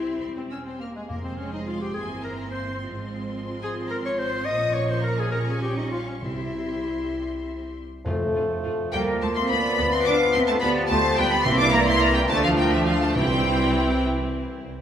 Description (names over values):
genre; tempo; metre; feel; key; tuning
quick classical-period movement for symphony orchestra; 65-73 BPM (dotted quarters); 6/8; rubato; F major from 8.1 s; A4 = 440 Hz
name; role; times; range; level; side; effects
rich studio violin section; melody; 0.0-14.0 s; E5 to F6; -29 LUFS; left 1 dB; none
clear clarinet; second line; 0.0-14.6 s; Ab3 to Eb5; -29 LUFS; left 1 dB; none
rich studio violin section; second line; 0.0-14.0 s; Ab4 to Eb6; -32 LUFS; left 1 dB; none
rich studio viola section; accompaniment; 0.0-14.7 s; F3 to Ab4; -33 LUFS; right 2 dB; none
mellow French horn section; sustained chords; 0.0-14.5 s; E3 to B4; -29 LUFS; left 3 dB; none
rich studio double bass section; bass; 0.0-14.7 s; E1 to F2; -31 LUFS; right 2 dB; none
warm symphonic cello section; bass; 0.0-14.0 s; E3 to D4; -30 LUFS; right 3 dB; none
timpani; percussion; 1.1-1.9, 6.2-14.0 s; F2 to C3; -32 LUFS; right 1 dB; none
mellow bassoon; accompaniment; 8.1-14.6 s; E3 to F3; -30 LUFS; right 2 dB; none
large flute ensemble; second line; 8.9-14.0 s; G4 to F5; -28 LUFS; equal; none
room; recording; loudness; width
wet recital hall reverb, RT60 1.5 s; recorded in a church or concert hall; -21 LUFS; side -9 dB against mid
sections
0.0-8.1 A section; 8.1-14.8 A section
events
none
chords
0.0 C; 1.1 Fm; 2.0 C7/G; 2.8 Fm/Ab; 4.5 Bbm; 5.3 Gdim/Bb; 6.2 C; 8.1 F; 8.9 Bb; 9.8 G7/D; 11.5 C7; 12.3 Dm; 13.2 C